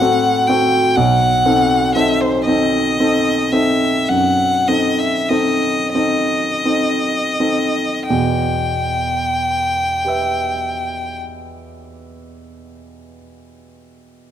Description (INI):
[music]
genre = classical, romantic duo for violin and grand piano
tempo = 26-42 BPM (dotted quarters)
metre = 12/8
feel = rubato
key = E minor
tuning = A4 = 440 Hz
[part]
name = bright violin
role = melody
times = 0.0-11.2 s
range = C5 to G5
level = -18 LUFS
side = left 2 dB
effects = none
[part]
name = clear baby grand piano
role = accompaniment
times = 0.0-14.3 s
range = B1 to E5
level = -18 LUFS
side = right 1 dB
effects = none
[sound]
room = moderate concert hall reverb, RT60 2.1 s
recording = close, detailed microphones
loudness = -14 LUFS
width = side -10 dB against mid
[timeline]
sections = 0.0-8.1 A section; 8.1-14.3 B section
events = slowing down 0.0-8.1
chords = 0.0 F#dim/A; 1.0 B7b9; 8.1 Em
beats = | 0.96 2.47 4.09 5.95 | 8.10 10.04 12.07 14.07